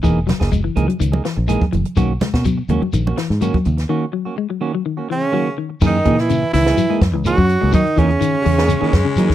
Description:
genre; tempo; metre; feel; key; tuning
afrobeat; 125 BPM; 4/4; straight; F# mixolydian; A4 = 440 Hz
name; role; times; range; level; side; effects
clean electric guitar; arpeggios; 0.0-9.3 s; C#3 to G#3; -22 LUFS; left 9 dB; none
clean electric guitar; stabs; 0.0-9.3 s; D#3 to G#4; -23 LUFS; right 6 dB; none
fingered electric bass; bass; 0.0-9.3 s; E1 to F#3; -18 LUFS; equal; none
compact cocktail drum kit; drums; 0.0-9.3 s; crash cymbal, hi-hat, kick drum, snare drum; -21 LUFS; equal; none
shekere; percussion; 0.0-9.3 s; none; -27 LUFS; left 2 dB; none
congas; percussion; 0.3-3.8 s; none; -23 LUFS; right 4 dB; none
clear tenor saxophone; melody; 5.1-9.3 s; C#4 to F#4; -19 LUFS; right 3 dB; slapback echo
trombone with bucket mute; second line; 5.1-9.3 s; C#3 to F#3; -23 LUFS; right 4 dB; none
raspy baritone saxophone; second line; 8.4-9.3 s; G3 to G#3; -24 LUFS; left 9 dB; none
room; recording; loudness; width
light reverb; dry, close 1970s-style studio recording; -15 LUFS; side -12 dB against mid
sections
0.0-5.8 A section; 5.8-9.3 B section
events
break 3.9-5.8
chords
0.0 F#13; 2.0 Bmaj9; 5.8 F#13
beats
| 0.04 0.52 1.01 1.49 | 1.97 2.45 2.93 3.42 | 3.90 4.38 4.86 5.34 | 5.82 6.30 6.78 7.25 | 7.73 8.21 8.69 9.17

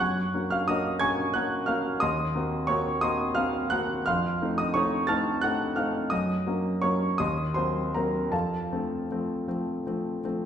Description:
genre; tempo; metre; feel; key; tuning
classical, romantic character piece for solo piano; 52-60 BPM (dotted quarters); 6/8; rubato; unclear; A4 = 440 Hz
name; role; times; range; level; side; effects
warm concert grand piano; solo; 0.0-10.5 s; Eb2 to A6; -25 LUFS; equal; none
room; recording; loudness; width
wet recital hall reverb, RT60 1.5 s; heard from further back in the room; -25 LUFS; side -9 dB against mid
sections
0.0-10.5 A section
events
none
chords
0.0 Gb; 2.0 Cm7b5/Eb; 4.1 F7; 6.1 Gb; 7.2 Cm7b5/Eb; 8.3 F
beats
| 0.01 1.02 | 2.04 3.04 | 4.07 5.10 | 6.12 7.20 | 8.33 9.48

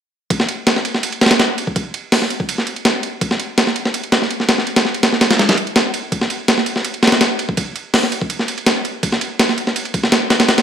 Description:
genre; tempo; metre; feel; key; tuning
drum and bass; 165 BPM; 4/4; straight; none; none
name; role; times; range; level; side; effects
breakbeat sampler-style drum kit; drums; 0.3-10.6 s; hi-hat, kick drum, ride cymbal, snare drum; -14 LUFS; equal; high-pass filter on kick, studio ambience, high-pass filter on cymbals, high-pass filter on snare, high-pass filter on hats
room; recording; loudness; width
moderate digital room reverb, RT60 1.1 s; dark, warm production; -14 LUFS; side -8 dB against mid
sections
0.3-10.6 A section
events
none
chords
none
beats
| 0.30 0.67 1.03 1.39 | 1.76 2.12 2.48 2.85 | 3.21 3.58 3.94 4.30 | 4.67 5.03 5.39 5.76 | 6.12 6.49 6.85 7.21 | 7.58 7.94 8.30 8.67 | 9.03 9.39 9.76 10.12 | 10.48

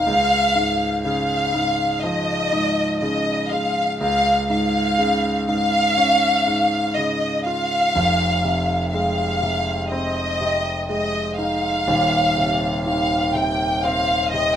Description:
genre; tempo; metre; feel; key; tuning
pop; 61 BPM; 4/4; straight; unclear; A4 = 442 Hz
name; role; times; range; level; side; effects
warm studio violin section; melody; 0.0-14.6 s; Eb5 to G5; -19 LUFS; equal; none
clear concert grand piano; accompaniment; 0.0-14.6 s; Eb1 to F4; -22 LUFS; equal; none
room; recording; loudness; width
wet studio reverb, RT60 0.5 s; rough home demo mix; -18 LUFS; side -9 dB against mid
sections
0.0-14.6 A section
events
none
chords
0.1 Db; 8.0 Fm7; 11.9 Ebsus2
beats
| 0.08 1.06 2.05 3.03 | 4.02 5.00 5.98 6.97 | 7.95 8.93 9.92 10.90 | 11.88 12.87 13.85

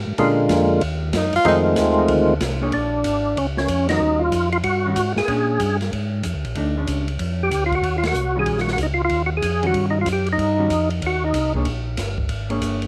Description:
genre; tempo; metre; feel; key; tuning
soul jazz organ trio; 188 BPM; 4/4; swing 64% on 8ths; unclear; A4 = 439 Hz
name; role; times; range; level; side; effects
mellow tonewheel organ; bass; 0.0-12.9 s; G1 to Bb2; -26 LUFS; equal; slow rotary speaker
percussive tonewheel organ; melody; 0.2-11.5 s; D3 to Ab4; -22 LUFS; equal; slow rotary speaker, chorus vibrato
hollow-body jazz guitar; accompaniment; 0.2-12.9 s; Eb3 to Db5; -29 LUFS; equal; none
open jazz drum kit; drums; 0.2-12.9 s; hi-hat, kick drum, ride cymbal, snare drum; -31 LUFS; equal; none
warm tenor saxophone; melody; 1.2-1.6 s; Eb4 to F4; -23 LUFS; equal; none
room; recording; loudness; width
light reverb; none; -20 LUFS; mono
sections
0.0-2.7 A section; 2.7-12.9 B section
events
tenor saxophone solo 0.0-2.7; band accent 3.8, 8.0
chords
0.2 Bb7#9; 0.8 Ebm; 1.5 F7#9; 2.7 Bb7#9; 4.0 Eb7#9; 5.3 Bb7#9; 7.8 Eb7#9; 11.7 Bb7#9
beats
| 0.19 0.50 0.82 1.14 | 1.46 1.77 2.09 2.41 | 2.73 3.05 3.37 3.69 | 4.00 4.32 4.64 4.96 | 5.28 5.60 5.92 6.24 | 6.56 6.88 7.19 7.51 | 7.83 8.15 8.47 8.79 | 9.11 9.43 9.74 10.06 | 10.38 10.70 11.02 11.34 | 11.66 11.97 12.29 12.61

